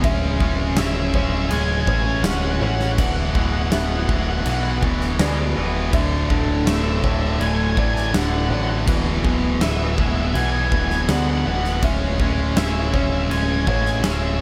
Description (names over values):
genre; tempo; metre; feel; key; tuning
post-rock; 81 BPM; 4/4; straight; unclear; A4 = 440 Hz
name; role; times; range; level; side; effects
felt-muted upright piano; arpeggios; 0.0-14.4 s; C#5 to F#5; -36 LUFS; equal; digital delay
twangy electric guitar; arpeggios; 0.0-14.4 s; D2 to E4; -32 LUFS; equal; none
tight distorted guitar; riff; 0.0-14.4 s; D2 to C#4; -27 LUFS; equal; distortion
growling picked electric bass; bass; 0.0-14.4 s; D1 to D2; -25 LUFS; equal; overdrive
huge arena drum kit; drums; 0.0-14.2 s; crash cymbal, kick drum, snare drum; -26 LUFS; equal; none
octave-fuzz lead guitar; melody; 0.8-14.4 s; E5 to G#5; -30 LUFS; equal; distortion, digital delay
room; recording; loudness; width
small room ambience; none; -20 LUFS; mono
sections
0.0-14.4 A section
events
none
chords
0.0 C#m/D; 3.0 Eadd9/D; 5.9 Dsus2; 8.9 Eadd9/D; 11.8 C#m/D